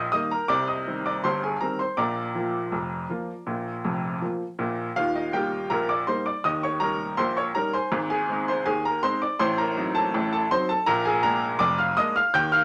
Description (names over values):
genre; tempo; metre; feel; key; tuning
ragtime piano; 81 BPM; 2/4; straight; Eb major; A4 = 440 Hz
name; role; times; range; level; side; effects
clear upright piano; solo; 0.0-12.6 s; F1 to G6; -25 LUFS; equal; none
room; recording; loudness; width
moderate club reverb, RT60 0.5 s; none; -25 LUFS; mono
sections
0.0-5.0 A section; 5.0-12.6 B section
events
none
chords
0.5 Cm; 2.0 Bb; 5.0 Eb; 6.4 Eb7; 7.9 Ab; 9.4 Adim7; 10.9 Bb7